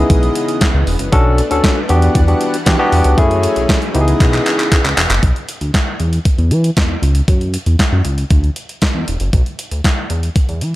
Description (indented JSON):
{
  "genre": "early-eighties boogie funk",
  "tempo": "117 BPM",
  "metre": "4/4",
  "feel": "straight",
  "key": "unclear",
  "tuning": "A4 = 440 Hz",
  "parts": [
    { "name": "barky tine electric piano", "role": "accompaniment", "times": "0.0-4.8 s", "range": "A3 to A4", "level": "-16 LUFS", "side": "left 1 dB", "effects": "overdrive" },
    { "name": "lush unison pad", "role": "sustained chords", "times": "0.0-5.2 s", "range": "C#3 to F#5", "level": "-22 LUFS", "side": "left 1 dB", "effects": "chorus" },
    { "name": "chorused synth bass", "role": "bass", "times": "0.0-10.8 s", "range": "E1 to E3", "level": "-15 LUFS", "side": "equal", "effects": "none" },
    { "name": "clean 12-bit digital drum machine", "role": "drums", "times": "0.1-10.7 s", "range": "handclaps, hi-hat, kick drum, snare drum", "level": "-15 LUFS", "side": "equal", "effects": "overdrive" }
  ],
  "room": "little or no reverb",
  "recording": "none",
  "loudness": "-12 LUFS",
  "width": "side -17 dB against mid",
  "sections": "0.0-5.2 A section; 5.2-10.8 B section",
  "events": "drum fill 4.2-5.2",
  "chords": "0.0 C#m9; 1.1 Bm9; 1.9 Em9; 3.2 F#m9; 3.9 C#m9; 5.2 Bm; 6.0 C#m; 7.3 Esus2; 8.0 C#m; 9.3 Bm; 10.1 N.C."
}